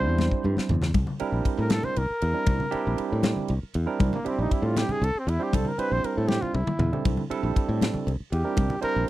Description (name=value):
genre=electric jazz fusion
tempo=79 BPM (dotted quarters)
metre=6/8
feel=straight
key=C mixolydian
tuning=A4 = 440 Hz
part: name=breathy trumpet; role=melody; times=0.0-9.1 s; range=Bb3 to C5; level=-30 LUFS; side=left 1 dB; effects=none
part: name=vintage hollow-body jazz guitar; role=second line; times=0.0-0.7 s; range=none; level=barely audible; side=none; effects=none
part: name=barky tine electric piano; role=accompaniment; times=0.0-9.1 s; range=G3 to C5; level=-30 LUFS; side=right 6 dB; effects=medium stereo tremolo
part: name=modern bright fingered electric bass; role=bass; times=0.0-9.1 s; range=Bb1 to A2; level=-26 LUFS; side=equal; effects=none
part: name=crisp fusion drum kit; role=drums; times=0.2-8.9 s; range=kick drum, ride cymbal, snare drum, toms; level=-27 LUFS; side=equal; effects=none
part: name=congas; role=percussion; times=0.2-8.9 s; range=none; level=-29 LUFS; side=left 3 dB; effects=none
room=little or no reverb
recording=dry, close 1970s-style studio recording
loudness=-23 LUFS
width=side -15 dB against mid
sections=1.0-9.1 A section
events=drum fill 0.2-1.0, 6.3-7.1; trumpet solo 1.0-9.1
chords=0.0 Cadd9; 1.0 C9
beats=0.19 | 0.95 1.72 | 2.48 3.24 | 4.00 4.77 | 5.53 6.29 | 7.05 7.81 | 8.57